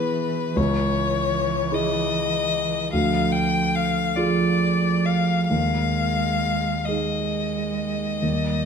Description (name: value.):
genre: classical, slow romantic movement for piano trio.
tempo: 43-53 BPM (dotted quarters).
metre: 12/8.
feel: rubato.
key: unclear.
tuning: A4 = 439 Hz.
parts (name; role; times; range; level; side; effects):
rich violin; melody; 0.0-8.7 s; B4 to G5; -24 LUFS; left 7 dB; none.
warm cello; second line; 0.0-8.7 s; E3 to G#3; -26 LUFS; right 6 dB; none.
warm concert grand piano; accompaniment; 0.0-8.7 s; C#2 to G#4; -25 LUFS; right 1 dB; none.
room: wet recital hall reverb, RT60 1.6 s.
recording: none.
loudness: -20 LUFS.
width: side -6 dB against mid.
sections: 0.0-8.7 A section.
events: none.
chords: 0.0 E; 0.6 C#m; 2.9 Ddim; 5.5 G#5/D#.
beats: | 0.57 1.73 2.92 4.17 | 5.51 6.88 8.23.